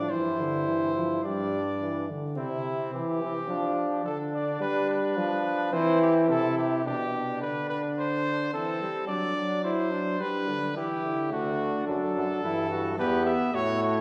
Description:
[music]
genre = classical, imitative canzona for brass ensemble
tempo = 107 BPM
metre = 4/4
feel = straight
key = C major, G major from 6.9 s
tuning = A4 = 439 Hz
[part]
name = warm trumpet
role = melody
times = 0.0-14.0 s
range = E4 to E5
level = -34 LUFS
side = equal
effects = none
[part]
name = warm flugelhorn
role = second line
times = 0.0-14.0 s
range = C4 to G4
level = -33 LUFS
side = equal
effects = none
[part]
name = warm trombone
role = accompaniment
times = 0.0-2.4, 11.3-14.0 s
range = D3 to B3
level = -33 LUFS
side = equal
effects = none
[part]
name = warm euphonium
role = bass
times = 0.0-14.0 s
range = D2 to G3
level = -32 LUFS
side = equal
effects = none
[sound]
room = wet recital hall reverb, RT60 1.7 s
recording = recorded in a church or concert hall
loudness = -28 LUFS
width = mono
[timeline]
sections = 0.0-2.4 A section; 2.4-6.9 B section; 6.9-14.0 C section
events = none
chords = 0.1 Gsus4; 1.2 G5; 2.4 C; 3.5 Dm/F; 4.6 G; 5.7 C/E; 6.9 G/B; 8.0 Am; 9.1 D/F#; 10.2 G; 11.3 D; 12.4 Em/G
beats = | 0.10 0.67 1.24 1.81 | 2.38 2.94 3.49 4.05 | 4.61 5.17 5.73 6.29 | 6.85 7.41 7.97 8.53 | 9.09 9.65 10.21 10.77 | 11.32 11.88 12.44 12.99 | 13.54

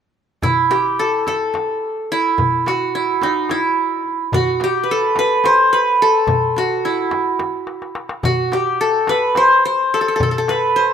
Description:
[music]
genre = Turkish makam ensemble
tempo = 215 BPM (eighths)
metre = 7/8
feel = straight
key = A makam nikriz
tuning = A4 = 441 Hz
[part]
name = qanun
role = melody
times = 0.4-10.9 s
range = D#4 to C5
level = -15 LUFS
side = equal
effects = none
[part]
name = darbuka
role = percussion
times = 0.4-10.6 s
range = none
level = -25 LUFS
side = left 2 dB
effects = none
[part]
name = frame drum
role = percussion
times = 0.4-10.6 s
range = none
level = -27 LUFS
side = right 1 dB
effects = none
[sound]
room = light reverb, studio reverb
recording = rough home demo mix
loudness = -15 LUFS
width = side -8 dB against mid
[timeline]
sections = 0.4-10.9 A section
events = drum fill 7.7-8.2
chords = none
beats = | 0.43 0.70 0.98 1.26 1.54 1.82 2.10 | 2.38 2.66 2.94 3.21 3.49 3.77 4.05 | 4.33 4.61 4.89 5.17 5.45 5.73 6.00 | 6.28 6.56 6.84 7.12 7.40 7.68 7.96 | 8.24 8.52 8.80 9.08 9.36 9.64 9.92 | 10.20 10.48 10.76

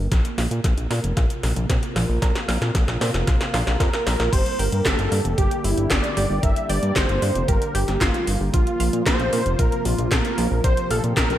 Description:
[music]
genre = synthwave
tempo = 114 BPM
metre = 4/4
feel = straight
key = G minor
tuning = A4 = 440 Hz
[part]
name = warm analog pad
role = sustained chords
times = 0.0-11.4 s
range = C3 to Bb4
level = -30 LUFS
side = right 1 dB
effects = chorus, sidechain pumping
[part]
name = fat analog bass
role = bass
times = 0.0-11.4 s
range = F1 to Bb2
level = -23 LUFS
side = equal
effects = tube saturation
[part]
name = analog pluck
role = arpeggios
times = 0.1-11.1 s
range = F3 to G5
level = -33 LUFS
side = right 3 dB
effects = chorus, digital delay
[part]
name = 80s electronic pad drums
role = drums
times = 0.1-11.4 s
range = crash cymbal, handclaps, hi-hat, snare drum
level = -26 LUFS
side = equal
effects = high-pass filter on snare, high-pass filter on hats, high-pass filter on cymbals, gated reverb
[part]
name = electronic kick drum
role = drums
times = 0.1-11.3 s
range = none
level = -22 LUFS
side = equal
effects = overdrive
[part]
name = wide unison lead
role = melody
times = 3.8-11.4 s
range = E4 to E5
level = -26 LUFS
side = equal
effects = tape echo
[part]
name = airy dreamy lead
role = second line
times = 4.3-11.4 s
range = E4 to E5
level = -33 LUFS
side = equal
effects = none
[sound]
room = light reverb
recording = none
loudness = -19 LUFS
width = side -12 dB against mid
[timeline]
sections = 0.0-4.3 A section; 4.3-11.4 B section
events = drum fill 0.0-4.3; filter sweep on analog synth pad 0.0-4.3; filter sweep on synth arpeggio sound 0.0-4.3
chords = 0.1 Bbsus2; 4.3 Gm; 8.5 Bbsus2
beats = | 0.12 0.64 1.17 1.70 | 2.22 2.75 3.27 3.80 | 4.33 4.85 5.38 5.91 | 6.43 6.96 7.49 8.01 | 8.54 9.06 9.59 10.12 | 10.64 11.17

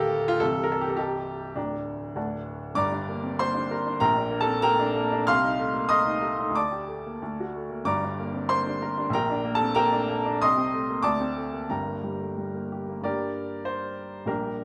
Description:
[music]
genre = classical, romantic character piece for solo piano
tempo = 86-119 BPM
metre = 2/4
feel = rubato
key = G minor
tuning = A4 = 440 Hz
[part]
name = warm baby grand piano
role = solo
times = 0.0-14.6 s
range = C1 to F6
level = -27 LUFS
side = equal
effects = none
[sound]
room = wet recital hall reverb, RT60 1.4 s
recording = none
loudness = -27 LUFS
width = mono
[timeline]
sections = 0.0-2.8 A section; 2.8-13.1 B section; 13.1-14.6 C section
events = none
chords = 0.4 Am7b5/C; 1.6 Gm/D; 2.2 D; 2.8 Gm; 4.0 Gm/Bb; 5.3 Adim/C; 6.5 Dsus4; 7.2 D; 7.9 Gm; 9.1 Gm/Bb; 10.4 Adim/C; 11.0 D5; 11.7 Gm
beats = | 0.42 0.98 | 1.56 2.16 | 2.77 3.40 | 4.01 4.62 | 5.28 5.89 | 6.54 7.20 | 7.86 8.51 | 9.14 9.75 | 10.42 11.04 | 11.70 12.38 | 13.05 13.67 | 14.29

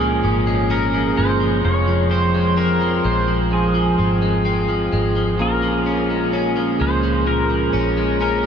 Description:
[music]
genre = dream pop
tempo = 64 BPM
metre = 4/4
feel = straight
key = Bb minor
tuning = A4 = 440 Hz
[part]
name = pedal steel guitar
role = melody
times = 0.0-8.5 s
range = Ab4 to Db5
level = -22 LUFS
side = right 1 dB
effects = analog chorus, analog delay
[part]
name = mellow tonewheel organ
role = sustained chords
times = 0.0-8.5 s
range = F3 to Ab4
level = -22 LUFS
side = right 2 dB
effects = slow rotary speaker
[part]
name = electric guitar at the edge of break-up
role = arpeggios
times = 0.0-8.5 s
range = F2 to Db4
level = -21 LUFS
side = left 2 dB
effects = wide subtle chorus, analog delay
[part]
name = vintage muted fingered electric bass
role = bass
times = 0.0-8.5 s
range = F1 to Db2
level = -22 LUFS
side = equal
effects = none
[part]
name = large celesta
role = texture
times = 0.0-8.0 s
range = F5 to Ab5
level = -38 LUFS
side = right 2 dB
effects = none
[sound]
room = wet huge ambient reverb, RT60 7.8 s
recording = dreamy mix soaked in reverb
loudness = -16 LUFS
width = side -7 dB against mid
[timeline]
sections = 0.0-8.5 A section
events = none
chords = 0.0 Bbm7; 1.6 Fm; 5.4 Bbm7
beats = 0.71 | 1.64 2.58 3.52 4.46 | 5.39 6.33 7.27 8.21

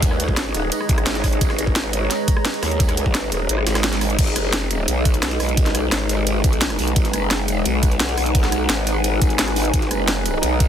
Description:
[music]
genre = dark technical drum and bass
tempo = 173 BPM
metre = 4/4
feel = straight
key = G# minor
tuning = A4 = 440 Hz
[part]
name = dark analog pad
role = sustained chords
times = 0.0-10.7 s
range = G#3 to F#5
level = -26 LUFS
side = equal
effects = chorus, phaser, sidechain pumping
[part]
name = growl bass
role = bass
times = 0.0-10.7 s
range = D#1 to D#2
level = -22 LUFS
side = equal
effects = chorus, overdrive, sidechain pumping
[part]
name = drum and bass drum kit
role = drums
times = 0.0-10.7 s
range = crash cymbal, hi-hat, rim click, snare drum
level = -23 LUFS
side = equal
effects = overdrive
[part]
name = electronic kick drum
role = drums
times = 0.0-10.7 s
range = none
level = -18 LUFS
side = equal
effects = overdrive
[part]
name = jungle sampler-style drum kit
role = drums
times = 0.0-10.7 s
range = ride cymbal, snare drum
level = -31 LUFS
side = right 2 dB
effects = none
[part]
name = granular cloud pad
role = texture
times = 0.0-10.7 s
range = D#4 to G#5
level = -28 LUFS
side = left 1 dB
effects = built-in reverb, sidechain pumping
[sound]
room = digital ambience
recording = dense, heavily limited modern master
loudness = -17 LUFS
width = side -9 dB against mid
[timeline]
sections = 0.0-4.2 A section; 4.2-10.7 A section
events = drop 0.0-4.2, 4.2-10.7; kick drops out 3.5-4.2; band accent 3.8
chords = 0.0 G#m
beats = | 0.03 0.37 0.72 1.06 | 1.41 1.76 2.11 2.45 | 2.80 3.15 3.49 3.84 | 4.19 4.53 4.88 5.23 | 5.57 5.92 6.27 6.61 | 6.96 7.31 7.66 8.00 | 8.35 8.70 9.04 9.39 | 9.74 10.08 10.43

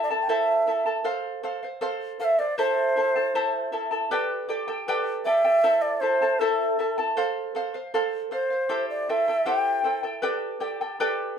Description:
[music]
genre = andean folk, Andean ensemble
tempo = 78 BPM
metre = 2/4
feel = straight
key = A minor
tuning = A4 = 445 Hz
[part]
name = large quena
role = melody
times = 0.0-10.0 s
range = A4 to G5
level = -22 LUFS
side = equal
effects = none
[part]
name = charango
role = accompaniment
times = 0.0-11.4 s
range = E4 to A5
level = -26 LUFS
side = right 1 dB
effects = none
[sound]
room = wet studio reverb, RT60 0.6 s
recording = band playing live in one room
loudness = -22 LUFS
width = side -7 dB against mid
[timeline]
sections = 0.0-4.1 A section; 4.1-11.4 A section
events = none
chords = 0.0 Am; 1.1 F/A; 2.6 Am; 4.1 G; 5.7 Am; 7.2 F/A; 8.7 C; 10.2 G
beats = 0.30 | 1.07 1.83 | 2.59 3.36 | 4.12 4.89 | 5.65 6.41 | 7.18 7.94 | 8.71 9.47 | 10.23 11.00

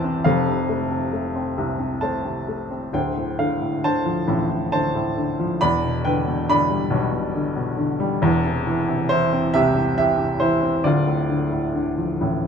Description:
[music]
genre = classical, lyrical solo piano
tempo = 68 BPM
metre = 3/4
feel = rubato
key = D dorian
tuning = A4 = 440 Hz
[part]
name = warm upright piano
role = solo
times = 0.0-12.5 s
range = D1 to B5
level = -19 LUFS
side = equal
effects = none
[sound]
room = light reverb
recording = dark, warm production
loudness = -19 LUFS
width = side -7 dB against mid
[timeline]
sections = 0.0-12.5 A section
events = none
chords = 0.2 F; 2.9 Dm7; 5.6 Em7; 8.2 C/E; 10.8 Dm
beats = | 0.24 1.12 2.02 | 2.93 3.83 4.72 | 5.61 6.48 7.35 | 8.22 9.10 9.96 | 10.84 11.74

